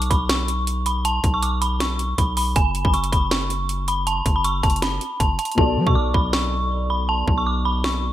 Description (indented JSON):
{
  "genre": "hip hop, trap",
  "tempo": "159 BPM",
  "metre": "4/4",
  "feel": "half-time",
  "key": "unclear",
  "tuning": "A4 = 440 Hz",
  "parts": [
    { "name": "dark detuned synth bell", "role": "melody", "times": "0.0-8.1 s", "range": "G#5 to D6", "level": "-23 LUFS", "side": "right 1 dB", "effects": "chorus" },
    { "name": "long sustained 808-style bass", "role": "bass", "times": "0.0-8.1 s", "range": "F#1 to F#3", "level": "-24 LUFS", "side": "equal", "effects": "none" },
    { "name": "trap drum kit", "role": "drums", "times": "0.0-7.9 s", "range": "hi-hat, kick drum, snare drum", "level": "-22 LUFS", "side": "equal", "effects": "gated reverb" },
    { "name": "felt-muted upright piano", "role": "accompaniment", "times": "5.5-8.1 s", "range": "B2 to D5", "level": "-26 LUFS", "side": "left 1 dB", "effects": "wide subtle chorus" }
  ],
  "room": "light reverb",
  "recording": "bright 1980s-style digital production",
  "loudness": "-18 LUFS",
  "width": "side -13 dB against mid",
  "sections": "0.0-8.1 A section",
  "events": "hi-hats muted 5.6-8.1",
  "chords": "0.0 B5; 2.6 F#m; 5.6 Bm7"
}